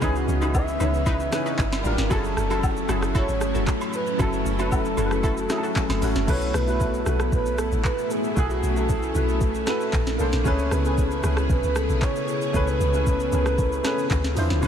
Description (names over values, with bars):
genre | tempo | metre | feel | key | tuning
amapiano | 115 BPM | 4/4 | straight | unclear | A4 = 440 Hz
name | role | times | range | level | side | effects
breathy flute-like synth lead | melody | 0.0-14.7 s | F#4 to E5 | -29 LUFS | right 1 dB | chorus, ping-pong delay
warm baby grand piano | accompaniment | 0.0-14.7 s | D#3 to C#5 | -28 LUFS | equal | analog chorus
string machine, full ensemble | sustained chords | 0.0-14.7 s | C#3 to Bb4 | -29 LUFS | left 1 dB | ensemble chorus, sidechain pumping
analog pluck | stabs | 0.0-5.7 s | D#4 to B4 | -34 LUFS | equal | none
deep log drum bass | bass | 0.0-14.7 s | F#1 to E2 | -25 LUFS | equal | none
smooth R&B drum kit | drums | 0.0-14.7 s | crash cymbal, handclaps, hi-hat, kick drum, rim click, shaker, snare drum | -27 LUFS | equal | none
agogo bells and woodblock | percussion | 0.0-6.0, 14.6-14.7 s | none | -36 LUFS | equal | none
room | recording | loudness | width
moderate huge ambient reverb, RT60 8.9 s | dreamy mix soaked in reverb | -21 LUFS | side -8 dB against mid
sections
0.0-6.3 A section; 6.3-14.7 A section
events
none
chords
0.0 C#m9; 1.6 Gm7; 2.1 F#m7; 6.3 B7sus4; 9.9 A#maj9; 10.5 Amaj9; 14.1 Dm9